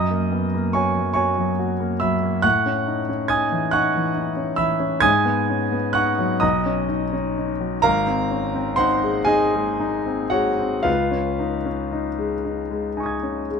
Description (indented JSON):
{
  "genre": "classical, impressionist solo piano",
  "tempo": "37-48 BPM (dotted quarters)",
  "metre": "6/8",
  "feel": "rubato",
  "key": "unclear",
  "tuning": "A4 = 440 Hz",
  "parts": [
    { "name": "clear concert grand piano", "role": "solo", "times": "0.0-13.6 s", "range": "Ab1 to G#6", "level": "-19 LUFS", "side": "equal", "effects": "none" }
  ],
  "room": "moderate studio reverb, RT60 0.7 s",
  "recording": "dark, warm production",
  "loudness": "-19 LUFS",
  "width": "side -6 dB against mid",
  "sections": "0.0-13.6 A section",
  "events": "none",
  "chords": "0.0 F#add9; 2.5 Amaj7#11; 5.1 G#m7; 6.4 Bmaj9; 7.9 Abadd9; 10.9 Dbadd9",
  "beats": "1.18 | 2.45 3.74 | 5.06 6.43 | 7.85 9.29 | 10.87 12.46"
}